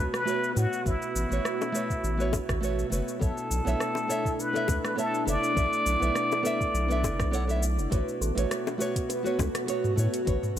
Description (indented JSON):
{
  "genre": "sunset chillout",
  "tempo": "102 BPM",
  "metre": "4/4",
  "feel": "swing 54% on 16ths",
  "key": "A major",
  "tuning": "A4 = 440 Hz",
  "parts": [
    { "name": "trumpet with plunger mute", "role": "melody", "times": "0.0-7.6 s", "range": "E4 to D5", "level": "-30 LUFS", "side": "equal", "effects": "tape echo" },
    { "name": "nylon-string guitar", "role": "accompaniment", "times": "0.0-10.6 s", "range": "A3 to F#5", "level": "-32 LUFS", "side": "moving between left 3 dB and right 5 dB", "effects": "auto-pan, tape echo" },
    { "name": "airy breathy pad", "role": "sustained chords", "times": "0.0-10.6 s", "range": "B2 to F#4", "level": "-34 LUFS", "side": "equal", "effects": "chorus" },
    { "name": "round analog bass", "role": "bass", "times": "0.0-10.6 s", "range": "F#1 to A2", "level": "-28 LUFS", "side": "equal", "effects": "none" },
    { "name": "smooth R&B drum kit", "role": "drums", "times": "0.1-10.6 s", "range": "hi-hat, rim click, shaker, toms", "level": "-36 LUFS", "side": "equal", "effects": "none" },
    { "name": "electronic kick drum", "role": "drums", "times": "0.9-10.4 s", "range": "none", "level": "-31 LUFS", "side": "equal", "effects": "none" },
    { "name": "bongos", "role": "percussion", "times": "1.6-9.5 s", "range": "none", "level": "-37 LUFS", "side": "left 7 dB", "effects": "none" },
    { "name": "kalimba", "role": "arpeggios", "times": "7.9-10.6 s", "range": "F#4 to B4", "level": "-35 LUFS", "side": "right 4 dB", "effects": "tape echo" }
  ],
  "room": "light reverb, small room ambience",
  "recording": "none",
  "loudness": "-25 LUFS",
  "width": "side -10 dB against mid",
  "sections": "0.0-10.6 A section",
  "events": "none",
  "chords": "0.0 A69; 3.2 Bm11; 7.9 A69",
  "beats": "0.27 | 0.86 1.45 2.04 2.63 | 3.21 3.80 4.39 4.98 | 5.57 6.16 6.74 7.33 | 7.92 8.51 9.10 9.69 | 10.27"
}